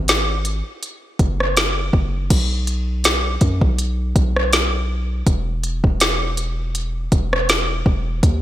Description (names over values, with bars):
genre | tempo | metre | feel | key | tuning
contemporary R&B | 81 BPM | 4/4 | swing 54% on 16ths | B major | A4 = 440 Hz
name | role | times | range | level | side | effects
long sustained 808-style bass | bass | 0.0-8.4 s | E1 to F#2 | -22 LUFS | equal | none
smooth R&B drum kit | drums | 0.1-8.4 s | crash cymbal, hi-hat, kick drum, rim click, snare drum | -17 LUFS | equal | none
room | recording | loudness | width
little or no reverb | none | -17 LUFS | side -13 dB against mid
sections
0.0-2.3 A section; 2.3-8.4 B section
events
none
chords
none